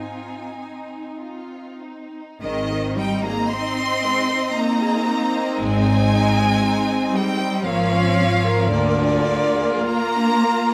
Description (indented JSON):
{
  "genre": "classical, slow romantic movement for string orchestra",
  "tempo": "47-60 BPM",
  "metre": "3/4",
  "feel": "rubato",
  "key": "Ab major",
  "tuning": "A4 = 441 Hz",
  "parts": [
    { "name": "rich chamber violin section", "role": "melody", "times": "0.0-10.7 s", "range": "D5 to C6", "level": "-26 LUFS", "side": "equal", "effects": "none" },
    { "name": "warm chamber violin section", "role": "second line", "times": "0.0-10.7 s", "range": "Ab3 to Eb5", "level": "-30 LUFS", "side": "equal", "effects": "none" },
    { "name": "rich chamber viola section", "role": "accompaniment", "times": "0.0-10.7 s", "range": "Bb3 to F4", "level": "-28 LUFS", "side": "equal", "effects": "none" },
    { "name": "clear chamber cello section", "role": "bass", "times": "0.0-10.7 s", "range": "D3 to Eb4", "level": "-26 LUFS", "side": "equal", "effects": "none" },
    { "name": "rich chamber double bass section", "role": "bass", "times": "2.4-9.7 s", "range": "Ab1 to D2", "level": "-26 LUFS", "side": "equal", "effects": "none" }
  ],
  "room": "moderate large studio reverb, RT60 1.2 s",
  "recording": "none",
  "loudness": "-20 LUFS",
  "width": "mono",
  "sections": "0.0-2.4 A section; 2.4-10.7 B section",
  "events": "none",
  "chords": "0.0 Ab; 7.7 Bbm/Ab; 8.7 Bb/D"
}